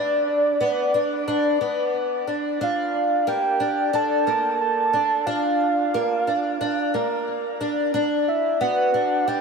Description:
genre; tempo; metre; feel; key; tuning
dream pop; 90 BPM; 4/4; straight; unclear; A4 = 440 Hz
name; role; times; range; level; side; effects
soft octave-layered synth lead; melody; 0.0-9.4 s; D5 to A5; -23 LUFS; right 3 dB; chorus, tape echo
fingerpicked twelve-string acoustic guitar; arpeggios; 0.0-9.4 s; Bb3 to D4; -23 LUFS; left 2 dB; lush chorus, tape echo
room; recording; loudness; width
wet shimmer reverb, RT60 4.1 s; none; -20 LUFS; side -5 dB against mid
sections
0.0-9.4 A section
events
none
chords
0.0 Bm; 2.6 Bbmaj7; 7.9 Bmadd11

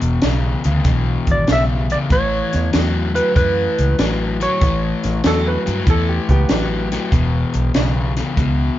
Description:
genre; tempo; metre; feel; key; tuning
electric blues shuffle; 96 BPM; 4/4; swing 67% on 8ths; unclear; A4 = 439 Hz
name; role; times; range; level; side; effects
crunchy overdriven guitar; riff; 0.0-8.8 s; E2 to F#3; -22 LUFS; left 4 dB; none
vintage muted fingered electric bass; bass; 0.0-8.7 s; E1 to G2; -19 LUFS; equal; none
compact cocktail drum kit; drums; 0.0-8.6 s; hi-hat, kick drum, snare drum; -19 LUFS; equal; none
clean lap steel guitar; melody; 1.3-5.6 s; B4 to E5; -20 LUFS; right 2 dB; none
bright upright piano; second line; 5.3-8.1 s; B3 to B4; -25 LUFS; right 1 dB; none
room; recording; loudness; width
light reverb; band playing live in one room, nothing above 7.5 kHz; -15 LUFS; side -13 dB against mid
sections
0.0-8.8 A section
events
none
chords
0.0 E5; 2.1 A; 7.1 E5

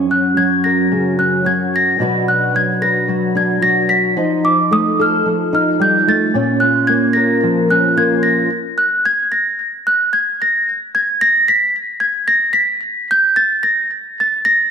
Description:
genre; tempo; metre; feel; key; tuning
folk; 111 BPM; 4/4; straight; unclear; A4 = 439 Hz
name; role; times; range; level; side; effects
fingerpicked steel-string acoustic guitar; accompaniment; 0.0-8.5 s; F#2 to B4; -16 LUFS; equal; analog chorus
celesta; melody; 0.1-14.7 s; D6 to B6; -14 LUFS; equal; ping-pong delay
room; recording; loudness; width
wet lush hall reverb, RT60 1.7 s, small room ambience; dreamy mix soaked in reverb; -13 LUFS; side -7 dB against mid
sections
0.0-14.7 A section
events
build-up 0.0-14.7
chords
0.0 F#; 2.0 Bm; 4.2 F7; 6.3 A#m; 8.5 N.C.

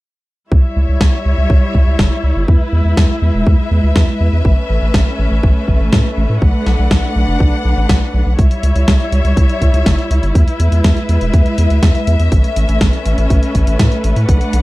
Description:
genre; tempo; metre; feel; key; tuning
italo disco; 122 BPM; 4/4; straight; unclear; A4 = 439 Hz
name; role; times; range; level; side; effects
clear studio string section; sustained chords; 0.5-14.6 s; G3 to F#5; -19 LUFS; left 1 dB; none
round analog bass; bass; 0.5-14.6 s; E1 to A2; -14 LUFS; equal; none
electronic kick drum; drums; 0.5-14.4 s; none; -13 LUFS; equal; none
gated 80s digital drum machine; drums; 1.0-14.6 s; hi-hat, snare drum; -19 LUFS; equal; gated reverb, gated reverb snare
room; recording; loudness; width
digital ambience; dry, close 1970s-style studio recording; -11 LUFS; side -19 dB against mid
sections
0.5-14.6 A section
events
filter sweep on analog synth bass 0.5-14.6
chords
0.5 C#dim; 2.5 E; 4.5 Aadd9; 6.4 Bm7; 8.4 C#dim; 10.4 E; 12.3 Aadd9

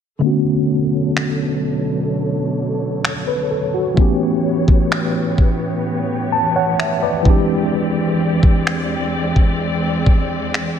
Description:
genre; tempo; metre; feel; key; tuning
contemporary R&B; 64 BPM; 4/4; straight; B minor; A4 = 441 Hz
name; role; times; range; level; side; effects
tine electric piano; accompaniment; 0.2-10.8 s; D3 to A5; -18 LUFS; equal; overdrive, fast stereo tremolo, low-pass filter
warm studio string section; sustained chords; 0.2-10.8 s; E2 to D5; -23 LUFS; equal; low-pass filter
smooth R&B drum kit; drums; 1.2-10.8 s; finger snaps, kick drum; -16 LUFS; equal; vintage 12-bit sampler grit
room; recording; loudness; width
light reverb; none; -15 LUFS; side -8 dB against mid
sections
0.2-10.8 A section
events
filter sweep 0.2-10.8; tine electric piano fill 5.8-7.7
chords
0.2 Bm9; 4.0 A9; 7.3 E7alt

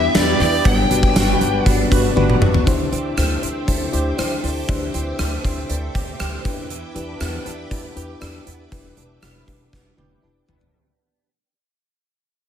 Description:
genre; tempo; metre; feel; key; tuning
1980s-style pop; 119 BPM; 4/4; straight; unclear; A4 = 441 Hz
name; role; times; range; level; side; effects
lead guitar through a small cranked amp; melody; 0.0-2.1 s; D5 to G5; -21 LUFS; left 1 dB; overdrive
FM electric piano with soft pad layer; accompaniment; 0.0-10.8 s; B3 to A5; -24 LUFS; left 4 dB; chorus, tremolo
raw garage guitar; accompaniment; 0.0-3.2 s; E3 to E4; -32 LUFS; right 2 dB; overdrive, ensemble chorus
string machine, full ensemble; sustained chords; 0.0-10.7 s; G4 to D6; -32 LUFS; equal; ensemble chorus
direct-recorded clean electric guitar; riff; 0.0-11.3 s; E3 to G4; -31 LUFS; right 6 dB; ensemble chorus, digital delay
upright bass; bass; 0.0-10.7 s; E1 to E2; -24 LUFS; equal; none
mellow synth brass; stabs; 0.1-2.4, 9.4-10.8 s; G3 to B4; -28 LUFS; right 2 dB; chorus, digital delay
gated 80s drum kit; drums; 0.1-10.7 s; hi-hat, kick drum, rim click, snare drum, tambourine, toms; -20 LUFS; equal; gated reverb
room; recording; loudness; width
light reverb, studio reverb; none; -16 LUFS; side -9 dB against mid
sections
0.0-2.7 A section; 2.7-10.7 B section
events
drum fill 2.2-2.7, 9.7-10.7; fade-out 2.7-10.7; band accent 8.7-10.7; FM electric piano fill 9.7-10.7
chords
0.0 Em7; 0.7 Gmaj7; 2.7 D9sus4; 6.4 Em7

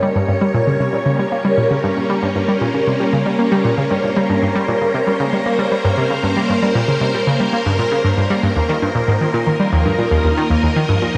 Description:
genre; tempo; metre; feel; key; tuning
ambient, sequencer-driven space music; 116 BPM; 4/4; straight; unclear; A4 = 440 Hz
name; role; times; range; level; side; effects
phased string machine; sustained chords; 0.0-11.2 s; F3 to Eb5; -20 LUFS; equal; ensemble chorus, phaser
analog pluck; riff; 0.0-11.2 s; Eb2 to Bb3; -19 LUFS; equal; chorus, delay
pulsing gated texture; texture; 0.0-11.2 s; C6; -37 LUFS; equal; none
room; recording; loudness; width
wet shimmer reverb, RT60 6.5 s; cassette tape; -17 LUFS; mono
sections
0.0-11.2 A section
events
none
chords
0.0 Gdim; 8.6 Ebsus2

